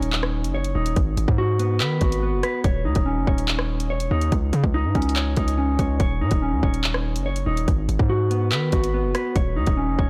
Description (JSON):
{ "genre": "hip hop, drill", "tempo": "143 BPM", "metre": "4/4", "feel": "half-time", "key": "Eb minor", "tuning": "A4 = 440 Hz", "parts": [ { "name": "mellow electric guitar", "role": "arpeggios", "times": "0.0-10.1 s", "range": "Cb4 to Db5", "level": "-28 LUFS", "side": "equal", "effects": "tape echo" }, { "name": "hard-hitting 808-style bass", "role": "bass", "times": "0.0-10.1 s", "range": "Eb1 to Eb3", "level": "-26 LUFS", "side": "equal", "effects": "none" }, { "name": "drill drum kit", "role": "drums", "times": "0.0-10.1 s", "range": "handclaps, hi-hat, kick drum, rim click", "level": "-25 LUFS", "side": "equal", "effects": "none" } ], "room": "digital ambience", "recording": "blown-out, overdriven recording, overdrive", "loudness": "-22 LUFS", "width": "mono", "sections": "0.0-10.1 A section", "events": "none", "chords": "0.0 Ebm7; 1.0 Abm7; 2.6 Eb7(no3); 4.3 Dbsus2; 6.0 Ebm7; 7.7 Abm7; 9.4 Ebm7" }